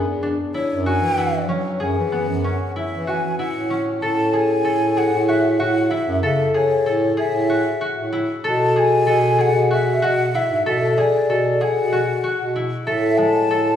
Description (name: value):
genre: contemporary instrumental, chamber music in an uneven meter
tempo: 190 BPM (eighths)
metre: 7/8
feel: straight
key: unclear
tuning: A4 = 440 Hz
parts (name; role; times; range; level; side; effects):
- concert harp; arpeggios; 0.0-13.8 s; G#3 to A4; -21 LUFS; left 3 dB; none
- warm bass clarinet; bass; 0.0-13.8 s; E2 to F#3; -22 LUFS; right 1 dB; none
- mellow hollow silver concert flute; melody; 0.5-13.8 s; C#5 to A5; -23 LUFS; equal; none
room: wet recital hall reverb, RT60 1.7 s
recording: recorded in a church or concert hall, studio ambience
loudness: -17 LUFS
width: side -9 dB against mid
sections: 0.0-4.0 A section; 4.0-13.8 B section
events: none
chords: 0.0 F#9sus4; 1.8 F#m9; 8.4 B5; 10.7 Bm7; 12.9 A5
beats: 0.23 0.54 0.86 1.17 1.49 | 1.81 2.12 2.44 2.75 3.07 3.39 3.70 | 4.02 4.33 4.65 4.97 5.28 5.60 5.91 | 6.23 6.55 6.86 7.18 7.50 7.81 8.13 | 8.44 8.76 9.08 9.39 9.71 10.02 10.34 | 10.66 10.97 11.29 11.61 11.92 12.24 12.55 | 12.87 13.19 13.50